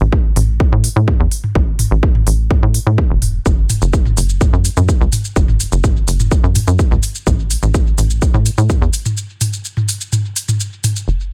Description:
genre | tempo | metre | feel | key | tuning
melodic techno | 126 BPM | 4/4 | straight | unclear | A4 = 439 Hz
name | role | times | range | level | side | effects
tight sequencer bass | bass | 0.0-11.3 s | E1 to A2 | -18 LUFS | equal | sidechain pumping
techno drum kit | drums | 0.0-11.1 s | hi-hat, shaker, toms | -21 LUFS | equal | low-pass filter on hats, studio reverb, low-pass filter on toms, low-pass filter on perc
electronic kick drum | drums | 0.1-8.8 s | none | -17 LUFS | equal | studio reverb
room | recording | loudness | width
little or no reverb | echo-heavy mix | -15 LUFS | mono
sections
0.0-11.1 A section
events
break 9.2-11.1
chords
none

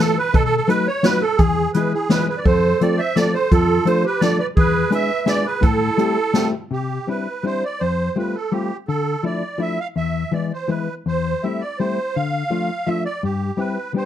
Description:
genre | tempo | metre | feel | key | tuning
musette waltz | 167 BPM | 3/4 | straight | A minor, C major from 6.7 s | A4 = 440 Hz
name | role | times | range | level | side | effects
musette accordion | melody | 0.0-14.1 s | G4 to F5 | -22 LUFS | right 4 dB | none
hollow-body jazz guitar | accompaniment | 0.0-14.1 s | E2 to A4 | -21 LUFS | left 4 dB | none
jazz brush drum kit | drums | 0.3-6.4 s | hi-hat, kick drum, snare drum | -20 LUFS | equal | none
breathy clarinet | second line | 1.7-6.5 s | E4 to C5 | -23 LUFS | right 4 dB | none
room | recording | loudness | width
moderate studio reverb, RT60 0.5 s | dark, warm production | -17 LUFS | side -11 dB against mid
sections
0.0-6.7 A section; 6.7-14.1 B section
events
none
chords
0.3 B7; 1.4 E; 2.5 F; 3.5 Dm/F; 4.6 E7; 5.6 Am7; 6.7 Cadd9; 7.8 Fadd9; 8.9 Dmadd9; 10.0 E; 11.1 Am7/E; 12.1 Dm; 13.2 C/G

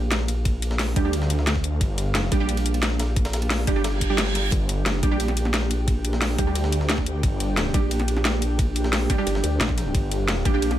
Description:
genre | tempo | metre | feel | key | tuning
dark technical drum and bass | 177 BPM | 4/4 | straight | G minor | A4 = 440 Hz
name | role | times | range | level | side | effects
orchestra-hit-like synth stab | stabs | 0.0-10.8 s | G3 to G4 | -28 LUFS | right 5 dB | built-in reverb, digital delay
vowel-sweep wobble bass | bass | 0.0-10.8 s | G1 to D2 | -24 LUFS | equal | chorus
airy breathy pad | texture | 0.0-10.8 s | D4 to G5 | -32 LUFS | equal | chorus, sidechain pumping
breakbeat sampler-style drum kit | drums | 0.1-10.8 s | hi-hat, ride cymbal, snare drum | -35 LUFS | right 1 dB | high-pass filter on cymbals, high-pass filter on snare, high-pass filter on hats
drum and bass drum kit | drums | 0.1-10.8 s | hi-hat, snare drum | -26 LUFS | left 1 dB | overdrive
electronic kick drum | drums | 0.5-10.5 s | none | -24 LUFS | equal | none
snarling distorted saw bass | bass | 1.0-2.3, 4.5-10.4 s | G1 to D2 | -24 LUFS | equal | distortion, tube saturation, sidechain pumping
reverse cymbal | sound effects | 3.9-4.5 s | none | -30 LUFS | right 4 dB | none
room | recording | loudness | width
light reverb | none | -20 LUFS | side -12 dB against mid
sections
0.0-10.8 A section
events
fade-in on analog synth pad 0.0-10.8; reverse cymbal 3.9-4.5; kick drops out 4.2-4.5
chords
0.0 G5

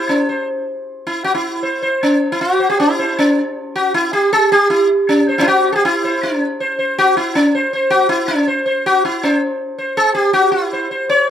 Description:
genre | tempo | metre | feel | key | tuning
indian classical | 158 BPM | 4/4 | straight | C raga puriya dhanashri | A4 = 444 Hz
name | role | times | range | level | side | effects
sitar | solo | 0.0-11.3 s | Db4 to Db5 | -13 LUFS | equal | none
room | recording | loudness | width
little or no reverb | recorded outdoors, with no room sound | -13 LUFS | side -9 dB against mid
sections
0.0-9.2 A section; 9.2-11.3 B section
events
speeding up 0.0-11.3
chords
none

